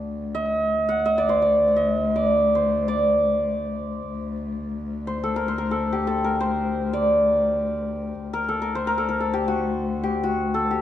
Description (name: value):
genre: Persian modal ensemble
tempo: free time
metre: none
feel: none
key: D dastgah homayun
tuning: A4 = 439 Hz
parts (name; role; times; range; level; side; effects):
- santur; melody; 0.0-10.8 s; D4 to F#5; -22 LUFS; equal; slapback echo
- dark cello; drone; 0.0-10.8 s; D2; -27 LUFS; left 3 dB; none
room: light reverb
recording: dark, warm production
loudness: -21 LUFS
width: side -11 dB against mid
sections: 0.0-10.8 A section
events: none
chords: none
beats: free time